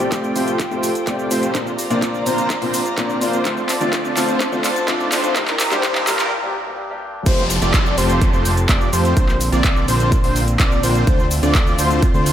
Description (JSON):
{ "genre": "EDM, festival progressive house", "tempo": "126 BPM", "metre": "4/4", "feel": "straight", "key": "F major", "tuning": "A4 = 438 Hz", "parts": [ { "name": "warm grand piano", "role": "accompaniment", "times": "0.0-7.2 s", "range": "G2 to G4", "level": "-25 LUFS", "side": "left 2 dB", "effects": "sidechain pumping, analog delay" }, { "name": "dark studio string section", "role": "sustained chords", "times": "0.0-12.3 s", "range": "D3 to Bb5", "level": "-25 LUFS", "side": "equal", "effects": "sidechain pumping, low-pass filter" }, { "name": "wide unison lead", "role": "arpeggios", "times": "0.0-12.3 s", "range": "Bb4 to D5", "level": "-25 LUFS", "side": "left 1 dB", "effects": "ensemble chorus, sidechain pumping, analog delay" }, { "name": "dense compressed supersaw", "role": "riff", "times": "0.0-12.3 s", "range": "A3 to D5", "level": "-23 LUFS", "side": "right 1 dB", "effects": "sidechain pumping, low-pass filter, analog delay" }, { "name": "fat analog bass", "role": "bass", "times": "0.0-12.3 s", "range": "F1 to F2", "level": "-23 LUFS", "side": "equal", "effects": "sidechain pumping, high-pass filter" }, { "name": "big-room dance drum kit", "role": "drums", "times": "0.0-12.3 s", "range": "crash cymbal, handclaps, hi-hat, shaker", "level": "-23 LUFS", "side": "equal", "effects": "overdrive, small room ambience" }, { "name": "riser and downlifter", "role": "sound effects", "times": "0.0-11.1 s", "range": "none", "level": "-30 LUFS", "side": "right 1 dB", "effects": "none" }, { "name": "electronic kick drum", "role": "drums", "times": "0.1-12.1 s", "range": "none", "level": "-18 LUFS", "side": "equal", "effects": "overdrive, high-pass filter on kick, small room ambience" } ], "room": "moderate plate reverb, RT60 2.1 s", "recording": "dreamy mix soaked in reverb, high-pass filter, faint mains hum", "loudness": "-15 LUFS", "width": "side -10 dB against mid", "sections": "0.0-7.3 A section; 7.3-12.3 B section", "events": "build-up 0.0-7.3; drum fill 0.0-6.3; filter sweep on supersaw synth 0.0-7.3; filter sweep on analog synth lead 0.0-7.3; filter sweep 0.0-7.3; break 6.3-7.3; drop 7.3-12.3", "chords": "0.0 Fadd9; 1.5 Bbadd9; 3.5 Dm7; 5.4 Gm; 7.3 Fadd9; 9.2 Bbadd9; 11.1 Dm7" }